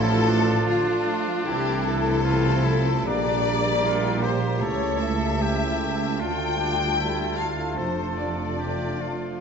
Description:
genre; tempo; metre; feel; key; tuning
classical, slow romantic movement for symphony orchestra; 76 BPM; 4/4; rubato; D minor; A4 = 445 Hz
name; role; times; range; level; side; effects
clear symphonic violin section; melody; 0.0-9.4 s; F4 to G5; -36 LUFS; left 3 dB; none
clear clarinet; second line; 0.0-9.4 s; E4 to G4; -32 LUFS; equal; none
mellow large flute ensemble; second line; 0.0-9.2 s; A5 to Bb5; -32 LUFS; left 2 dB; none
rich studio violin section; second line; 0.0-9.4 s; F4 to G5; -28 LUFS; left 5 dB; none
warm oboe; second line; 0.0-9.4 s; D4 to A4; -33 LUFS; right 1 dB; none
rich symphonic viola section; accompaniment; 0.0-9.4 s; D3 to F4; -31 LUFS; right 1 dB; none
bright trombone section; sustained chords; 0.0-9.4 s; D3 to Bb3; -33 LUFS; right 4 dB; none
mellow French horn section; sustained chords; 0.0-9.4 s; C4 to A4; -35 LUFS; left 4 dB; none
mellow tuba; bass; 0.0-9.3 s; F1 to D2; -31 LUFS; right 3 dB; none
rich symphonic cello section; bass; 0.0-9.4 s; C#2 to C3; -30 LUFS; right 2 dB; none
warm symphonic double bass section; bass; 0.0-9.4 s; F1 to D2; -31 LUFS; right 2 dB; none
room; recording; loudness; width
moderate scoring stage reverb, RT60 1.8 s; nothing above 7.9 kHz; -21 LUFS; side -6 dB against mid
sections
0.0-9.4 A section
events
none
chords
0.0 Dm; 1.5 Am/C; 3.1 Gm/Bb; 4.6 A7/C#; 6.2 Dm; 7.8 Dm/F

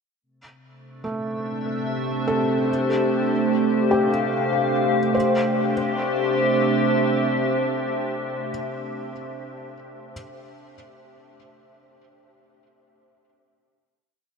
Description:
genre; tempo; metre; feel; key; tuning
ambient; 73 BPM; 3/4; straight; C major; A4 = 440 Hz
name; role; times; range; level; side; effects
glassy FM pad; sustained chords; 1.4-8.4 s; A3 to F5; -22 LUFS; equal; ensemble chorus, built-in reverb
analog drone; drone; 1.1-8.5 s; C3 to C4; -28 LUFS; right 1 dB; chorus
felt-muted upright piano; arpeggios; 1.0-10.1 s; A3 to C5; -28 LUFS; equal; tape echo
room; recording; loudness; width
wet huge ambient reverb, RT60 8.4 s; none; -20 LUFS; side -5 dB against mid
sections
0.2-5.2 A section; 5.2-7.6 final chord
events
fade-in on ambient pad 0.2-5.2; fade-in on felt piano 0.2-5.2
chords
0.2 C; 2.7 Dm; 5.2 C

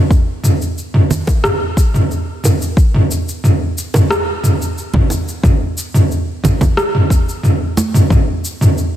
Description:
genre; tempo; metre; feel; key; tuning
downtempo; 90 BPM; 4/4; straight; none; none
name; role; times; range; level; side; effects
deep house drum kit; drums; 0.1-8.9 s; rim click, shaker, toms; -14 LUFS; equal; overdrive
electronic kick drum; drums; 0.1-8.2 s; none; -13 LUFS; equal; none
congas and bongos; percussion; 1.1-7.9 s; none; -21 LUFS; right 3 dB; none
room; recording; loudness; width
little or no reverb; none; -12 LUFS; side -12 dB against mid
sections
0.0-9.0 A section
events
none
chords
none

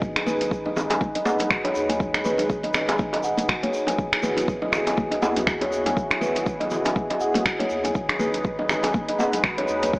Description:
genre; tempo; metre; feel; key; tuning
afro house; 121 BPM; 4/4; swing 57% on 16ths; G# minor; A4 = 440 Hz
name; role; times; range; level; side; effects
warm analog pad; sustained chords; 0.0-10.0 s; G#3 to B4; -28 LUFS; equal; lush chorus, sidechain pumping
warm sub bass; bass; 0.0-10.0 s; F#1 to D#2; -43 LUFS; equal; sidechain pumping
electronic kick drum; drums; 0.0-10.0 s; none; -28 LUFS; equal; none
tube shaker; percussion; 0.0-10.0 s; none; -41 LUFS; equal; none
kalimba; arpeggios; 0.2-9.9 s; F#4 to G#5; -26 LUFS; equal; sidechain pumping, digital delay
afro-pop drum kit; drums; 0.2-9.9 s; finger snaps, hi-hat; -26 LUFS; equal; none
bongos; percussion; 0.2-9.9 s; none; -29 LUFS; right 1 dB; none
congas; percussion; 0.3-9.9 s; none; -31 LUFS; left 1 dB; none
room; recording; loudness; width
moderate lush hall reverb, RT60 2.2 s; AM radio sound; -21 LUFS; side -23 dB against mid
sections
0.0-10.0 A section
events
none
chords
0.0 G#m7; 4.0 Eadd9/G#; 8.0 G#m

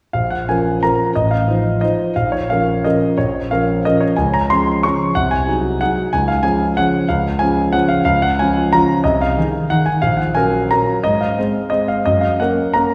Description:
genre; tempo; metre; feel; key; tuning
classical, piano waltz; 167-197 BPM; 3/4; rubato; Bb minor; A4 = 441 Hz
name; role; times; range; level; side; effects
warm concert grand piano; solo; 0.1-12.9 s; A1 to Db6; -17 LUFS; equal; none
room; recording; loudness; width
wet scoring stage reverb, RT60 1.6 s; recorded in a church or concert hall; -17 LUFS; mono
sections
0.1-12.9 A section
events
none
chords
0.1 Bbm; 1.2 F7/A; 2.2 Bbm; 4.2 Db; 5.2 Ab7/C; 6.1 Db; 8.1 Bbm/Db; 9.1 Ab/C; 10.0 Gb/Bb; 11.0 Fm/Ab; 12.1 Gb

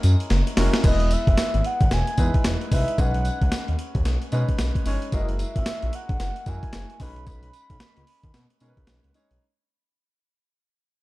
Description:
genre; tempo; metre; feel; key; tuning
R&B, new jack swing; 112 BPM; 4/4; swing 62% on 16ths; B major; A4 = 440 Hz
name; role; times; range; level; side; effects
mellow horn-like synth lead; melody; 0.0-9.1 s; D#5 to B5; -31 LUFS; equal; chorus
clear concert grand piano; accompaniment; 0.0-9.4 s; G#3 to C#5; -31 LUFS; equal; none
smooth synth bass; bass; 0.0-9.4 s; E1 to B2; -23 LUFS; equal; none
boom bap sampler-style drum kit; drums; 0.0-9.4 s; crash cymbal, hi-hat, kick drum, snare drum, tambourine; -24 LUFS; equal; none
cowbell; percussion; 0.3-9.0 s; none; -40 LUFS; left 6 dB; none
room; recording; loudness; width
little or no reverb; dark, warm production; -20 LUFS; side -18 dB against mid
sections
0.8-9.4 A section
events
drum fill 0.3-0.8; fade-out 0.8-9.4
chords
0.0 F#9; 0.8 Emaj7; 3.0 B69; 5.1 F#9; 7.0 B69

